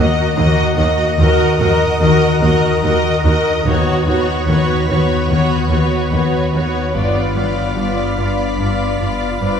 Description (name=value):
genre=cinematic, suspense film score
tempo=73 BPM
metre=4/4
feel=straight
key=unclear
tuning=A4 = 440 Hz
part: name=rich studio violin section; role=melody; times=0.0-9.6 s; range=C#5 to Eb5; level=-21 LUFS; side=left 2 dB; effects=none
part: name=warm studio viola section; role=accompaniment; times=0.0-9.6 s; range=Bb3 to B4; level=-19 LUFS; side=right 1 dB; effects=none
part: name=soft additive organ-like pad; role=sustained chords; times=0.0-9.6 s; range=Bb4 to B5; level=-24 LUFS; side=equal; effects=ensemble chorus, built-in reverb
part: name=concert harp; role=riff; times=0.0-9.6 s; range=G2 to Eb4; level=-19 LUFS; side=left 5 dB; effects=none
part: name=clear studio cello section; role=bass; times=0.0-9.5 s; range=Eb2 to G2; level=-23 LUFS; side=right 2 dB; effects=none
part: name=warm studio double bass section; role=bass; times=0.0-9.5 s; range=G1 to Eb2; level=-24 LUFS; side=right 3 dB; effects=none
part: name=pure sine sub bass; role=drone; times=0.0-9.6 s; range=G1 to Eb2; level=-23 LUFS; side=right 2 dB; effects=none
part: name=concert harp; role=texture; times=1.2-9.6 s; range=none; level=barely audible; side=none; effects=none
room=wet scoring stage reverb, RT60 1.6 s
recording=minimal, uncompressed stereo recording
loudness=-13 LUFS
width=side -7 dB against mid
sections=0.0-9.6 A section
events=none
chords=0.0 Ebm; 3.7 Badd9/D#; 6.9 G7